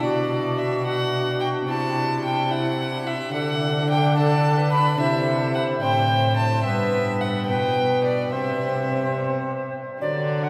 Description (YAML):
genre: classical, renaissance-style consort dance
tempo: 72 BPM (dotted quarters)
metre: 6/8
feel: straight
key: unclear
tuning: A4 = 444 Hz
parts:
  - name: bright tenor recorder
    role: melody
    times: 0.0-10.5 s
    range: E4 to F#5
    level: -30 LUFS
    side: equal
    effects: none
  - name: warm violin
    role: second line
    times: 0.0-10.5 s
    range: D4 to B5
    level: -28 LUFS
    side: equal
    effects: none
  - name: mellow bassoon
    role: accompaniment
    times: 0.0-10.5 s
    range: F#3 to E4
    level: -30 LUFS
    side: equal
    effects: none
  - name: rich cello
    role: bass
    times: 0.0-10.5 s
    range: G2 to D3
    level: -27 LUFS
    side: equal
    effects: none
room: wet cathedral reverb, RT60 5.9 s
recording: heard from further back in the room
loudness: -23 LUFS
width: mono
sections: 0.0-10.0 A section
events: none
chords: 0.0 Bm; 1.7 C; 3.3 D; 5.0 C; 6.7 G; 8.3 C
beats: | 0.02 0.85 | 1.69 2.52 | 3.34 4.17 | 5.00 5.83 | 6.66 7.49 | 8.33 9.17 | 10.02